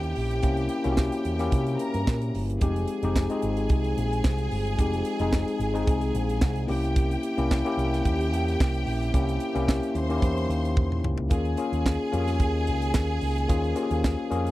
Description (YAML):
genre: disco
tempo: 110 BPM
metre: 4/4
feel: straight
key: unclear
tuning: A4 = 441 Hz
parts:
  - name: bright studio string section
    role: second line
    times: 0.0-14.5 s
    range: G4 to C6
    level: -34 LUFS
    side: equal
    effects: none
  - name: tine electric piano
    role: accompaniment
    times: 0.0-14.5 s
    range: Ab3 to Ab4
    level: -28 LUFS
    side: left 3 dB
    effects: none
  - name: dark French horn section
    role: sustained chords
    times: 0.0-14.5 s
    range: C3 to C5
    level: -35 LUFS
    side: right 2 dB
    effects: none
  - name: picked electric bass with an envelope filter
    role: bass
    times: 0.0-14.5 s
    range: F1 to C3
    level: -28 LUFS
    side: right 1 dB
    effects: none
  - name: tight funk drum kit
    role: drums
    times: 0.0-14.5 s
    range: handclaps, hi-hat, kick drum, snare drum, toms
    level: -25 LUFS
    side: right 1 dB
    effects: none
room: little or no reverb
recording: dry, close 1970s-style studio recording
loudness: -23 LUFS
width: side -16 dB against mid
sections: 0.0-11.3 A section; 11.3-14.5 B section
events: drum fill 10.8-11.3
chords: 0.0 C7b9; 2.6 Fm9; 6.7 C7b9; 11.3 Eb7sus4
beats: | 0.44 0.99 1.53 2.07 | 2.62 3.16 3.70 4.25 | 4.79 5.33 5.88 6.42 | 6.96 7.51 8.05 8.60 | 9.14 9.69 10.23 10.78 | 11.32 11.86 12.41 12.95 | 13.50 14.04